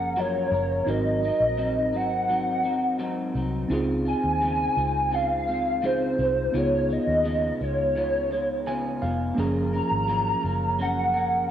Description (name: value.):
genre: indie pop, bedroom pop.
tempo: 85 BPM.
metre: 4/4.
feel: straight.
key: Db major.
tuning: A4 = 439 Hz.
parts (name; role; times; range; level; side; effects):
warbly nostalgic lead; melody; 0.0-11.5 s; C5 to Bb5; -24 LUFS; equal; ensemble chorus, cassette tape, tape echo.
electric guitar through a small old amp; accompaniment; 0.0-11.5 s; Ab2 to Bb4; -31 LUFS; left 2 dB; analog chorus, vibrato effect, cassette tape.
mellow tine electric piano; accompaniment; 0.0-11.5 s; F3 to Ab5; -30 LUFS; right 3 dB; medium stereo tremolo, cassette tape.
vintage muted fingered electric bass; bass; 0.0-11.5 s; F1 to Eb2; -30 LUFS; equal; none.
room: light reverb, digital ambience.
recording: home recording on cassette.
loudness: -22 LUFS.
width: side -10 dB against mid.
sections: 0.0-11.5 A section.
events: tine electric piano fill 8.3-9.4.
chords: 0.0 Gbmaj7; 0.9 Ab7; 3.7 Dbmaj7; 6.5 Db7; 9.4 Gbmaj7.